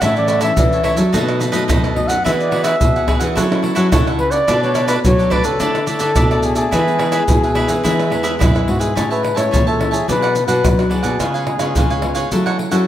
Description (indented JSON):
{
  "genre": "samba and choro",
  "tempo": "107 BPM",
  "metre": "4/4",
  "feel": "straight",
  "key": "A major",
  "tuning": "A4 = 439 Hz",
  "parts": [
    { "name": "mellow flugelhorn", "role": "melody", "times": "0.0-12.6 s", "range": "F#4 to F#5", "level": "-19 LUFS", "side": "left 1 dB", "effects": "diffuse ambient delay" },
    { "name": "cavaquinho", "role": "accompaniment", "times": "0.0-12.9 s", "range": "D4 to A5", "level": "-22 LUFS", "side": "right 3 dB", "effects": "none" },
    { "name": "nylon-string guitar", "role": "accompaniment", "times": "0.0-12.9 s", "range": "F#2 to A4", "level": "-23 LUFS", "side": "left 4 dB", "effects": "none" },
    { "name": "nylon-string guitar", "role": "bass", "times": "0.0-12.8 s", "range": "E2 to F#3", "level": "-20 LUFS", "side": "right 1 dB", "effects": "none" },
    { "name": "maracas, surdo, pandeiro and tamborim", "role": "percussion", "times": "0.0-12.9 s", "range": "none", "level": "-19 LUFS", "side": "right 1 dB", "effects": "none" }
  ],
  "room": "moderate lush hall reverb, RT60 1.8 s",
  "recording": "dreamy mix soaked in reverb",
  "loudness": "-14 LUFS",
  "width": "side -12 dB against mid",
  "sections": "0.0-9.0 A section; 9.0-12.9 B section",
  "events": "none",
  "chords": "0.0 A; 1.1 B7; 2.3 Eadd9; 3.4 F#m7; 4.5 Bm7; 5.6 Dsus2; 6.7 E; 9.0 Amaj7; 10.1 Bm; 11.2 C#7; 12.3 F#m7"
}